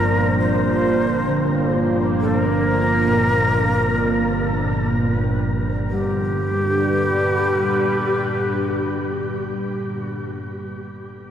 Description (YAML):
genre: ambient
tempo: 66 BPM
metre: 4/4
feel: straight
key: unclear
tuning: A4 = 440 Hz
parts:
  - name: breathy shakuhachi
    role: melody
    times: 0.0-9.5 s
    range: G4 to C5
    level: -22 LUFS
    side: left 1 dB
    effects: shimmer reverb, diffuse ambient delay
  - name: sweeping resonant pad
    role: sustained chords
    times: 0.0-10.0 s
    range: G2 to B4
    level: -23 LUFS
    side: right 1 dB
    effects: chorus, shimmer reverb
  - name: quartz singing bowl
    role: arpeggios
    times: 0.0-9.5 s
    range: Bb2 to D4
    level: -27 LUFS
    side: equal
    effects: diffuse ambient delay
  - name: organ-like drone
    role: drone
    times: 0.0-9.5 s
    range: G1 to G2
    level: -25 LUFS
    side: equal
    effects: ensemble chorus, built-in reverb, phaser
  - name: wind-like tuned noise texture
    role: texture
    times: 0.0-6.0 s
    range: C4 to C5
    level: -34 LUFS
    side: equal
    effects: none
room: wet huge ambient reverb, RT60 7.7 s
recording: none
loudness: -18 LUFS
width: side -9 dB against mid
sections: 0.0-5.9 A section; 5.9-9.5 B section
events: none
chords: 0.0 Bbadd9; 5.9 G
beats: 0.43 1.34 | 2.24 3.14 4.05 4.98 | 5.91 6.82 7.71 8.61